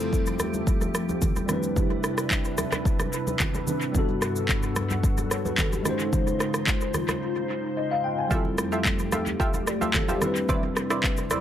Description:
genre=amapiano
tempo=110 BPM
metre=4/4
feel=straight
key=F lydian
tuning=A4 = 441 Hz
part: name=tine electric piano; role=accompaniment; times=0.0-11.4 s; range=G3 to Ab5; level=-29 LUFS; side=left 1 dB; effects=lush chorus
part: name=glassy FM pad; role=sustained chords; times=0.0-11.4 s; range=F2 to C5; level=-31 LUFS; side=left 1 dB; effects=ensemble chorus, built-in reverb, phaser, sidechain pumping
part: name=afro-pop drum kit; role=drums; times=0.0-11.4 s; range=handclaps, kick drum, rim click, shaker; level=-26 LUFS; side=equal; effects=dub echo
part: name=congas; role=percussion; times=0.4-11.4 s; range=none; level=-34 LUFS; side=right 2 dB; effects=dub echo
part: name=punchy chord stab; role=stabs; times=8.3-11.4 s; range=E4 to E5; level=-30 LUFS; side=right 2 dB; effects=chorus, dub echo
room=light reverb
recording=echo-heavy mix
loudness=-23 LUFS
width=side -10 dB against mid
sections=0.0-11.4 A section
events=break 7.2-8.3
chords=0.0 Fmaj9; 1.5 Cmaj9; 3.9 Gmaj9; 5.9 Dbmaj9; 8.3 Fmaj9; 10.2 Cmaj9

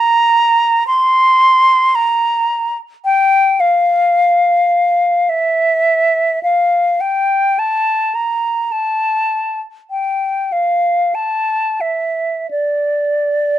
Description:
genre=classical, free, expressive piece for unaccompanied flute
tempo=41-56 BPM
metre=4/4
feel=rubato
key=D minor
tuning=A4 = 440 Hz
part: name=hollow concert flute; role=solo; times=0.0-13.6 s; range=D5 to C6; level=-12 LUFS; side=equal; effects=none
room=light reverb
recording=dark, warm production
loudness=-12 LUFS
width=side -12 dB against mid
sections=0.0-13.6 A section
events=none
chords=none

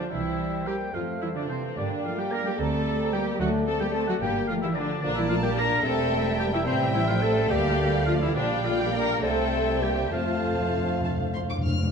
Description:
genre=quick classical-period movement for symphony orchestra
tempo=65-74 BPM (dotted quarters)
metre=6/8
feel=rubato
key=F major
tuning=A4 = 440 Hz
part: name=dark chamber violin section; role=melody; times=0.0-11.9 s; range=F5 to F6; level=-37 LUFS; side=left 2 dB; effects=none
part: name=clear oboe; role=second line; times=0.0-11.0 s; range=C5 to Bb5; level=-34 LUFS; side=equal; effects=none
part: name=dark studio violin section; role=second line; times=0.0-11.7 s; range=Bb4 to F5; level=-35 LUFS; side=left 1 dB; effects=none
part: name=mellow clarinet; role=second line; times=0.0-11.6 s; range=C5 to E5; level=-36 LUFS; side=left 4 dB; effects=none
part: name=mellow large flute ensemble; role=second line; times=0.0-11.6 s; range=E5 to Bb5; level=-35 LUFS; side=equal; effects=none
part: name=dark bassoon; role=accompaniment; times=0.0-11.6 s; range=F3 to Bb3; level=-35 LUFS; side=right 1 dB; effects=none
part: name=rich studio viola section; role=accompaniment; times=0.0-11.0 s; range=C4 to Bb4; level=-29 LUFS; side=left 1 dB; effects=none
part: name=dark French horn section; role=sustained chords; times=0.0-11.0 s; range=E3 to D4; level=-33 LUFS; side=left 4 dB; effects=none
part: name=rich chamber cello section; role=bass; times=0.0-11.0 s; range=C3 to Bb3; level=-32 LUFS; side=right 4 dB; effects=none
part: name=warm chamber double bass section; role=bass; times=0.1-11.7 s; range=E1 to G2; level=-30 LUFS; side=right 3 dB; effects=none
part: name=timpani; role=percussion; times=10.1-11.9 s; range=F2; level=-29 LUFS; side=left 1 dB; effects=none
room=wet scoring stage reverb, RT60 1.7 s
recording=dark, warm production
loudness=-23 LUFS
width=side -6 dB against mid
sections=0.0-11.9 A section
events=timpani fill 10.1-11.9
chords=0.1 C7; 0.9 F; 1.8 Gm; 3.4 D7; 4.2 Gm; 5.0 Bbmaj7; 5.8 Edim; 6.7 Am7; 7.5 Dm; 8.4 Gm7/Bb; 9.2 C; 10.1 F

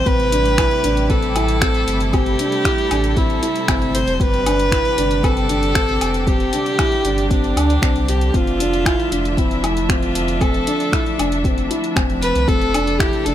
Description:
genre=piano and strings electronica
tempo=116 BPM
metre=4/4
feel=straight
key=A minor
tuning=A4 = 436 Hz
part: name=warm viola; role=melody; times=0.0-13.3 s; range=D4 to C5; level=-21 LUFS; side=equal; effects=ping-pong delay
part: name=muted studio string section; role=sustained chords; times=0.0-13.3 s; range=C3 to E5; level=-26 LUFS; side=right 2 dB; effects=sidechain pumping
part: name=warm sub bass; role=bass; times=0.0-13.3 s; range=E1 to D2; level=-22 LUFS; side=equal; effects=tube saturation, sidechain pumping
part: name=felt-muted upright piano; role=riff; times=0.1-13.3 s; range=C4 to E4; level=-22 LUFS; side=left 2 dB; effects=ping-pong delay
part: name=deep house drum kit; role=drums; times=0.1-13.3 s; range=finger snaps, hi-hat, woodblock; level=-25 LUFS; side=equal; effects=none
part: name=electronic kick drum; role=drums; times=0.1-13.1 s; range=none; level=-21 LUFS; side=equal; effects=none
room=little or no reverb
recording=none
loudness=-15 LUFS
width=side -11 dB against mid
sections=0.0-13.3 A section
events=none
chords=0.1 Am7; 4.2 Gsus4; 8.3 Dmadd9/F

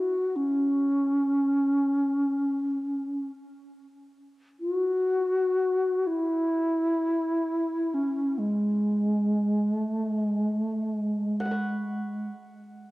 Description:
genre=world meditative, free-time meditation music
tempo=free time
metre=none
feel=none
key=unclear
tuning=A4 = 439 Hz
part: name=mellow hollow alto flute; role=melody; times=0.0-12.3 s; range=G#3 to F#4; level=-25 LUFS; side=equal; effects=cassette tape, tape echo
part: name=hammered dulcimer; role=texture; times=0.0-3.4, 11.4-12.9 s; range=E5 to C#6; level=-37 LUFS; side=equal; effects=cassette tape
room=wet spring reverb, RT60 1.3 s, studio ambience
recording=home recording on cassette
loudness=-24 LUFS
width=side -19 dB against mid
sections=0.0-12.9 A section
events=none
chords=none

